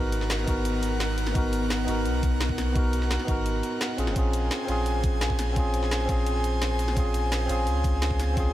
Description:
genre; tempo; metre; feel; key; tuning
liquid drum and bass; 171 BPM; 4/4; straight; unclear; A4 = 444 Hz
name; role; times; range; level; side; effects
tine electric piano; accompaniment; 0.0-8.5 s; B3 to A#4; -29 LUFS; equal; tape echo
airy breathy pad; sustained chords; 0.0-8.5 s; B3 to G#5; -33 LUFS; left 1 dB; chorus
warm sub bass; bass; 0.0-8.5 s; E#1 to C#2; -27 LUFS; equal; none
drum and bass drum kit; drums; 0.1-8.4 s; hi-hat, snare drum; -33 LUFS; equal; overdrive
electronic kick drum; drums; 0.5-8.4 s; none; -27 LUFS; equal; overdrive
room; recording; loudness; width
light reverb, digital ambience; none; -23 LUFS; side -14 dB against mid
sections
0.0-8.5 A section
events
none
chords
0.0 G#m7; 4.0 A#m7

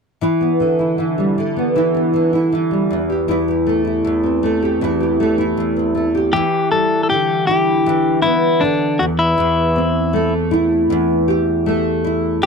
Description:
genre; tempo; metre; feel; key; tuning
acoustic pop; 79 BPM; 4/4; straight; E minor; A4 = 440 Hz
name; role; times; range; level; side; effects
nylon-string guitar; accompaniment; 0.2-12.5 s; E2 to G4; -16 LUFS; equal; double-tracked left and right
clean electric guitar; melody; 6.3-12.5 s; D4 to A4; -16 LUFS; left 3 dB; none
room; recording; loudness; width
moderate booth ambience, RT60 0.2 s; dry, close 1970s-style studio recording; -14 LUFS; side -5 dB against mid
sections
0.2-6.3 A section; 6.3-12.5 B section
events
none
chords
0.2 Em7; 2.9 Am7/E; 6.3 Em7; 9.0 Am7/E

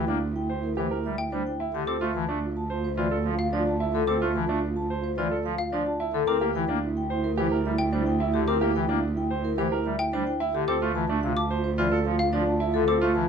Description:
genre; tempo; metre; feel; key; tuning
classical, minimalist pattern music; 109 BPM; 4/4; straight; D minor; A4 = 440 Hz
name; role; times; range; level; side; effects
vibraphone with medium mallets; melody; 0.0-13.3 s; G4 to A5; -30 LUFS; left 7 dB; none
dark French horn; second line; 0.0-13.3 s; E4 to F4; -32 LUFS; right 2 dB; none
pipe organ, soft reed; accompaniment; 0.0-13.3 s; C3 to C4; -31 LUFS; left 3 dB; none
warm cello; bass; 0.0-13.3 s; D2; -29 LUFS; right 3 dB; none
bright baby grand piano; arpeggios; 0.1-13.2 s; D4 to C5; -30 LUFS; right 5 dB; none
xylophone with plastic mallets; arpeggios; 1.2-13.1 s; F5 to D6; -33 LUFS; left 3 dB; none
room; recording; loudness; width
light reverb; dark, warm production; -24 LUFS; side -7 dB against mid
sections
0.0-13.3 A section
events
none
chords
0.0 C7/D (rootless); 1.9 Dm7; 6.3 C7/D; 10.7 Dm7

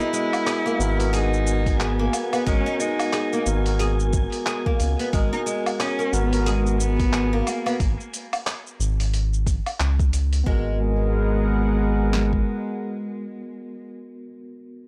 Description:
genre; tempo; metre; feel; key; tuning
organic downtempo; 90 BPM; 4/4; swing 59% on 16ths; G# minor; A4 = 438 Hz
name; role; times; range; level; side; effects
rich cello; melody; 0.0-13.9 s; G#3 to E4; -30 LUFS; equal; tape echo
tine electric piano; accompaniment; 0.0-14.9 s; B3 to A#4; -31 LUFS; equal; medium tremolo, sidechain pumping, tape echo
warm analog pad; sustained chords; 0.0-13.9 s; G#3 to F#5; -34 LUFS; equal; chorus, sidechain pumping
oud; arpeggios; 0.0-10.8 s; G#3 to G#4; -32 LUFS; equal; tape echo
dusty soul sampler-style drum kit; drums; 0.0-10.4 s; handclaps, hi-hat, shaker, woodblock; -32 LUFS; equal; none
wind-like tuned noise texture; texture; 1.1-7.8 s; G#5; -40 LUFS; equal; built-in reverb
round analog bass; bass; 0.8-12.4 s; G#1 to C#2; -25 LUFS; equal; sidechain pumping
deep house drum kit; drums; 1.7-12.5 s; kick drum, snare drum; -26 LUFS; equal; none
room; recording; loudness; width
little or no reverb; dry, gritty hardware recording, transformer saturation; -23 LUFS; mono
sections
0.0-10.5 A section; 10.5-13.1 B section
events
none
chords
0.0 G#m7

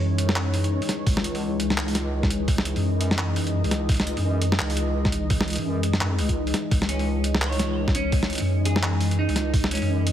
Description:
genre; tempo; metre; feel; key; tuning
half-time drum and bass; 170 BPM; 4/4; swing 60% on 16ths, half-time; C# minor; A4 = 436 Hz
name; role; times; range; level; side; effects
deep dark ambient pad; sustained chords; 0.0-10.1 s; E3 to D#5; -29 LUFS; left 1 dB; chorus, built-in reverb, vintage 12-bit sampler grit, sidechain pumping
deep soft wobble bass; bass; 0.0-10.1 s; C#2 to F#2; -25 LUFS; equal; chorus
boom bap sampler-style drum kit; drums; 0.2-10.1 s; handclaps, hi-hat, snare drum; -27 LUFS; equal; none
electronic kick drum; drums; 1.1-9.6 s; none; -24 LUFS; equal; none
semi-hollow electric guitar; arpeggios; 6.9-9.9 s; C#4 to C#5; -30 LUFS; right 2 dB; digital delay
room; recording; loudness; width
light reverb; heavily compressed radio sound, multiband compression; -21 LUFS; side -10 dB against mid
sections
0.0-10.1 A section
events
break 6.4-6.7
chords
0.0 C#madd9

